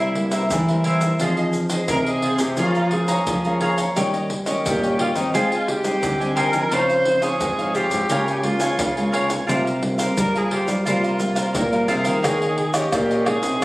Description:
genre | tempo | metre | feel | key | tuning
samba and choro | 87 BPM | 4/4 | straight | unclear | A4 = 440 Hz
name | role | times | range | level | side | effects
warm viola | melody | 0.0-13.6 s | Eb4 to C5 | -23 LUFS | equal | plate reverb
cavaquinho | accompaniment | 0.0-13.6 s | Eb4 to Bb5 | -24 LUFS | equal | none
nylon-string guitar | accompaniment | 0.0-13.6 s | G2 to Ab4 | -27 LUFS | equal | none
nylon-string guitar | bass | 0.0-13.6 s | Ab2 to Ab3 | -23 LUFS | equal | none
egg shaker, pandeiro, surdo and tamborim | percussion | 0.0-13.6 s | none | -27 LUFS | equal | none
room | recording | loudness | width
moderate studio reverb, RT60 0.6 s | recorded on a phone in the room, studio reverb | -18 LUFS | side -19 dB against mid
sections
0.0-12.2 A section; 12.2-13.6 B section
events
none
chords
0.0 C7; 1.2 Fm7; 2.6 Bbm7/F; 4.0 Eb7/G; 5.3 Abmaj7; 6.7 Dbmaj9; 8.1 Bbm7/Db; 9.5 C7sus4; 12.2 Eb7sus4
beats
0.52 | 1.21 1.90 2.59 3.28 | 3.97 4.66 5.35 6.04 | 6.73 7.42 8.11 8.80 | 9.49 10.18 10.87 11.55 | 12.24 12.93 13.62

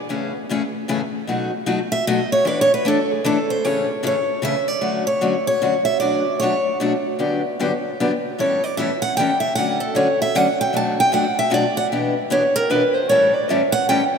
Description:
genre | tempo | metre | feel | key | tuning
jazz | 152 BPM | 3/4 | swing 62% on 8ths | A major, D major from 4.8 s | A4 = 440 Hz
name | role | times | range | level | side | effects
picked steel-string acoustic guitar | accompaniment | 0.1-14.0 s | G2 to A4 | -21 LUFS | left 3 dB | none
picked steel-string acoustic guitar | melody | 1.9-14.0 s | G#4 to A5 | -19 LUFS | right 1 dB | none
room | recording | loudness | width
wet cathedral reverb, RT60 5.0 s | in a vast, echoing space | -17 LUFS | side -6 dB against mid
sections
0.0-4.8 A section; 4.8-14.2 A section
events
steel-string acoustic guitar solo 0.0-14.2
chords
0.1 Amaj7; 1.3 B7; 2.5 E7sus4; 3.6 Amaj7; 4.8 Dmaj7; 6.0 Bm9; 7.2 Gmaj7; 8.4 A7; 9.6 Dmaj7; 10.7 Bm7; 11.9 Em7/B; 13.1 A7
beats
| 0.10 0.50 0.89 | 1.29 1.68 2.08 | 2.47 2.86 3.26 | 3.65 4.04 4.44 | 4.83 5.23 5.62 | 6.01 6.41 6.80 | 7.20 7.59 7.99 | 8.38 8.77 9.17 | 9.56 9.95 10.35 | 10.74 11.13 11.53 | 11.92 12.31 12.70 | 13.10 13.49 13.88

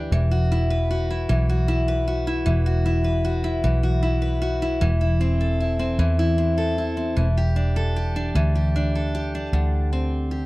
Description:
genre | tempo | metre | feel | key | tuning
six-eight pop ballad | 51 BPM (dotted quarters) | 6/8 | straight | E minor | A4 = 439 Hz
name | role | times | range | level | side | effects
picked steel-string acoustic guitar | accompaniment | 0.0-10.5 s | D3 to B4 | -24 LUFS | left 1 dB | none
vintage muted fingered electric bass | bass | 0.0-10.5 s | E1 to E2 | -21 LUFS | equal | none
room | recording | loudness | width
little or no reverb | dry, close 1970s-style studio recording | -20 LUFS | side -20 dB against mid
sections
0.0-9.5 A section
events
none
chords
0.1 Esus2; 4.8 Am/E; 7.2 Gsus2/E; 9.5 D7sus4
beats
| 0.12 1.29 | 2.47 3.64 | 4.82 6.00 | 7.17 8.35 | 9.53

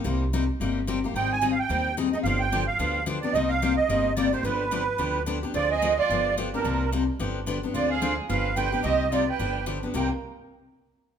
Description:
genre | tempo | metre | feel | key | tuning
acoustic string swing (jazz manouche) | 218 BPM | 4/4 | swing 58% on 8ths | C minor, C harmonic minor from 5.5 s | A4 = 439 Hz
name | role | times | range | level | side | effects
picked steel-string acoustic guitar | accompaniment | 0.0-10.1 s | C3 to Ab4 | -28 LUFS | left 5 dB | none
upright bass | bass | 0.0-10.1 s | G1 to Eb2 | -30 LUFS | right 1 dB | none
musette accordion | melody | 1.2-10.1 s | Bb4 to Ab5 | -26 LUFS | right 5 dB | none
rich violin | second line | 5.5-10.1 s | Bb3 to B4 | -34 LUFS | right 5 dB | none
room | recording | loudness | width
moderate large studio reverb, RT60 1.4 s | band playing live in one room | -23 LUFS | side -8 dB against mid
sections
0.0-5.5 A section; 5.5-9.9 B section; 9.9-11.1 C section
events
none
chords
0.0 Cm7; 1.1 Abmaj7; 2.2 G7; 3.3 Cm7; 4.4 G7; 5.5 Dm7b5; 6.1 G7; 6.6 Cm9; 7.2 G7; 7.7 Dm7b5; 8.3 G7; 8.8 Cm7; 9.4 G7; 9.9 Cm7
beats
| 0.05 0.32 0.60 0.87 | 1.15 1.42 1.70 1.97 | 2.25 2.52 2.80 3.07 | 3.35 3.62 3.90 4.17 | 4.45 4.72 4.99 5.27 | 5.54 5.82 6.09 6.37 | 6.64 6.92 7.20 7.47 | 7.75 8.02 8.30 8.57 | 8.85 9.12 9.40 9.67 | 9.95

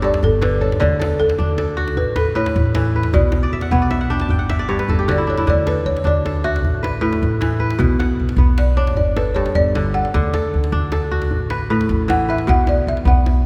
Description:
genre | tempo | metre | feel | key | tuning
west african traditional, West African string and xylophone music | 103 BPM (dotted quarters) | 12/8 | straight | D major | A4 = 440 Hz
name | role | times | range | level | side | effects
balafon | melody | 0.0-13.5 s | A4 to F#5 | -24 LUFS | equal | none
kora | arpeggios | 0.0-13.5 s | G2 to A5 | -23 LUFS | equal | none
upright bass | bass | 0.0-13.5 s | G1 to D2 | -22 LUFS | equal | none
djembe | percussion | 0.1-13.4 s | none | -24 LUFS | equal | none
room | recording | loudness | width
wet church reverb, RT60 3.5 s | recorded in a church or concert hall | -18 LUFS | mono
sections
0.0-13.5 A section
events
balafon solo 0.0-13.5; kora fill 3.4-5.5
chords
0.0 G5; 0.8 D; 2.0 A; 3.1 Bm; 4.3 G5; 5.5 D; 6.6 A5; 7.8 Bm; 9.0 G5; 10.1 D; 11.3 A5; 12.5 B5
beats
0.23 | 0.81 1.39 1.97 2.55 | 3.14 3.72 4.30 4.88 | 5.47 6.05 6.64 7.22 | 7.80 8.39 8.97 9.56 | 10.14 10.72 11.31 11.89 | 12.48 13.06

